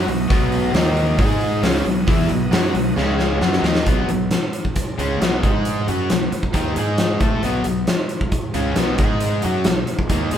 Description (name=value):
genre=classic rock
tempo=135 BPM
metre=4/4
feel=straight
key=B major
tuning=A4 = 440 Hz
part: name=bright tonewheel organ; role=sustained chords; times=0.0-3.9 s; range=B3 to D#5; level=-33 LUFS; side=right 1 dB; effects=none
part: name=biting overdriven guitar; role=riff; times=0.0-10.4 s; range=B2 to A4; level=-24 LUFS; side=right 5 dB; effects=none
part: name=crunchy overdriven guitar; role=riff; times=0.0-10.4 s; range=B2 to A4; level=-23 LUFS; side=left 5 dB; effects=none
part: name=fuzz fingered electric bass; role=bass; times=0.0-10.4 s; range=B1 to A2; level=-25 LUFS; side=right 1 dB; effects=overdrive
part: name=huge arena drum kit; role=drums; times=0.1-10.4 s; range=hi-hat, kick drum, snare drum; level=-20 LUFS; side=equal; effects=none
room=moderate large studio reverb, RT60 1.2 s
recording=band playing live in one room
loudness=-17 LUFS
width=side -9 dB against mid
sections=0.0-3.9 A section; 3.9-10.4 B section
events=drum fill 3.0-3.9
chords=0.0 B; 0.7 D#5; 1.2 G#5; 1.6 B; 3.0 C#5; 3.4 B; 3.9 B5; 5.4 G#5; 5.9 B; 6.8 G#5; 7.2 B5; 9.0 G#5; 9.4 B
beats=| 0.30 0.75 1.19 1.64 | 2.08 2.53 2.97 3.42 | 3.86 4.31 4.76 5.20 | 5.65 6.09 6.54 6.99 | 7.43 7.88 8.32 8.77 | 9.21 9.66 10.10